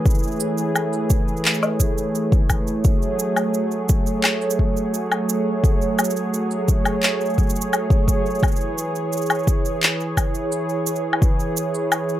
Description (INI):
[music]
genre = folktronica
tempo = 86 BPM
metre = 4/4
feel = straight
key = unclear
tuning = A4 = 440 Hz
[part]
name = warm analog pad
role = sustained chords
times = 0.0-12.2 s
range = E3 to C#5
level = -22 LUFS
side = right 1 dB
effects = wide subtle chorus, plate reverb
[part]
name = cimbalom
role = arpeggios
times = 0.0-5.4 s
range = none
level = barely audible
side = none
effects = none
[part]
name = electronic cabasa, woodblock and handclaps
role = drums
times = 0.1-12.2 s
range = none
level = -22 LUFS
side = left 1 dB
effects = none
[part]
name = electronic kick drum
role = drums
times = 0.1-11.4 s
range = none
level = -18 LUFS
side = equal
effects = none
[sound]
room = moderate small room reverb, RT60 0.5 s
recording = none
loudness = -18 LUFS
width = side -13 dB against mid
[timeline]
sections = 0.0-12.2 A section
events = none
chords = 0.0 Amaj7; 2.8 F#madd9; 8.4 E6